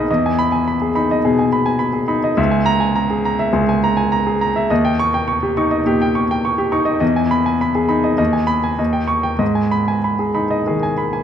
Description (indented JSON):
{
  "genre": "classical, virtuoso piano study",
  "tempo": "103 BPM",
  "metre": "4/4",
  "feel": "rubato",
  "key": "G# minor",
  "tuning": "A4 = 440 Hz",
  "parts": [
    { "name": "clear grand piano", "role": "solo", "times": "0.0-11.2 s", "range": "B1 to C#6", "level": "-15 LUFS", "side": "equal", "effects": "none" }
  ],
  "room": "wet recital hall reverb, RT60 1.4 s",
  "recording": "dark, warm production",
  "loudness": "-15 LUFS",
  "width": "side -9 dB against mid",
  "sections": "0.0-11.2 A section",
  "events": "none",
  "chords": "0.1 Emaj7; 2.4 A#m7b5/C#; 4.7 D#7; 7.0 Emaj7; 8.2 G#m/D#; 8.8 D#7; 9.4 G#m"
}